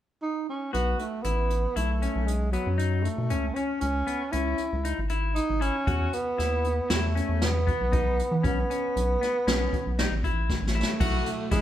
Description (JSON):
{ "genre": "progressive instrumental, band music in an uneven meter", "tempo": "117 BPM", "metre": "5/4", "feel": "straight", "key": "B mixolydian", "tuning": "A4 = 440 Hz", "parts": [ { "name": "breathy tenor saxophone", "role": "melody", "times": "0.2-11.6 s", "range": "F#3 to E4", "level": "-29 LUFS", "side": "right 2 dB", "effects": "none" }, { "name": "clean electric guitar", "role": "arpeggios", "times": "0.7-11.6 s", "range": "B3 to F#4", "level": "-32 LUFS", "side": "left 5 dB", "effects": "none" }, { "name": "rubbery square bass", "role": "bass", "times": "0.7-11.6 s", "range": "G#1 to E3", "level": "-28 LUFS", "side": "equal", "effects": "none" }, { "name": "jazz brush drum kit", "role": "drums", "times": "0.7-11.6 s", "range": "crash cymbal, hi-hat, kick drum, snare drum", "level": "-30 LUFS", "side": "equal", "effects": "none" }, { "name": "archtop guitar, miked and amplified", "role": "accompaniment", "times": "11.0-11.6 s", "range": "B2 to E4", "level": "-35 LUFS", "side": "right 2 dB", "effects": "none" } ], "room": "moderate large studio reverb, RT60 1.2 s", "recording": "band playing live in one room", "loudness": "-24 LUFS", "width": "side -12 dB against mid", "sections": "0.7-11.0 A section", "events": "drum fill 10.5-11.0", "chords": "0.0 N.C.; 0.7 B7sus4; 3.3 Amaj7 (rootless); 5.9 E5; 8.4 B7sus4" }